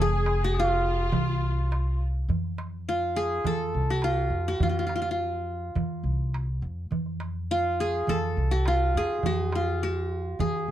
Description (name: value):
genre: Arabic maqam ensemble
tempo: 104 BPM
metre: 4/4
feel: straight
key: F maqam saba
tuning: A4 = 439 Hz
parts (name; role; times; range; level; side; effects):
- qanun; melody; 0.0-10.7 s; F4 to Db5; -27 LUFS; equal; none
- bright reedy ney; second line; 0.0-2.0 s; F4 to Ab4; -34 LUFS; left 3 dB; none
- rich symphonic violin section; second line; 0.0-2.0 s; F4 to Ab4; -37 LUFS; left 1 dB; none
- upright bass; bass; 0.0-10.7 s; F1 to F2; -28 LUFS; equal; none
- darbuka; percussion; 0.1-10.6 s; none; -33 LUFS; right 4 dB; none
room: light reverb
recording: dark, warm production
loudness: -25 LUFS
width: side -12 dB against mid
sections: 0.0-2.3 A section; 2.3-10.7 B section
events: none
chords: none